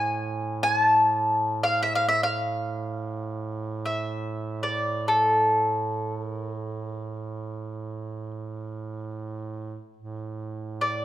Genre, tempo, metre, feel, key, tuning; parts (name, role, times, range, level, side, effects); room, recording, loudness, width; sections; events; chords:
caucasian folk, Caucasian lament; free time; A4 = 436 Hz
mandolin; melody; 0.0-11.0 s; A4 to A5; -23 LUFS; left 1 dB
warm duduk; drone; 0.0-11.0 s; A2; -32 LUFS; right 4 dB
moderate recital hall reverb, RT60 1.4 s; minimal, uncompressed stereo recording; -24 LUFS; side -13 dB against mid
0.0-10.0 A section; 10.0-11.0 A section